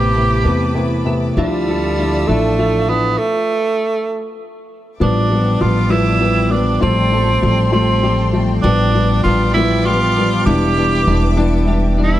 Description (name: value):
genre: six-eight pop ballad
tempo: 66 BPM (dotted quarters)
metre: 6/8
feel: straight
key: unclear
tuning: A4 = 442 Hz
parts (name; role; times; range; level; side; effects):
- clear tenor saxophone; melody; 0.0-12.2 s; G3 to G4; -18 LUFS; right 2 dB; none
- felt-muted upright piano; accompaniment; 0.0-12.2 s; C3 to E4; -18 LUFS; left 3 dB; none
- dark studio string section; sustained chords; 0.0-12.2 s; F4 to E6; -28 LUFS; left 2 dB; none
- clean electric guitar; arpeggios; 0.0-12.2 s; F3 to E5; -27 LUFS; right 5 dB; ensemble chorus, tape echo
- upright bass; bass; 0.0-12.2 s; E1 to E2; -18 LUFS; equal; none
room: light reverb, small room ambience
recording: dark, warm production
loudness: -13 LUFS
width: side -13 dB against mid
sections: 0.0-5.0 A section; 5.0-12.2 B section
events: stop 3.2-5.0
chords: 0.0 Amadd9; 1.4 Dmadd9; 5.0 G7/A; 6.8 Fadd9/A; 8.7 G7/A; 10.5 Em7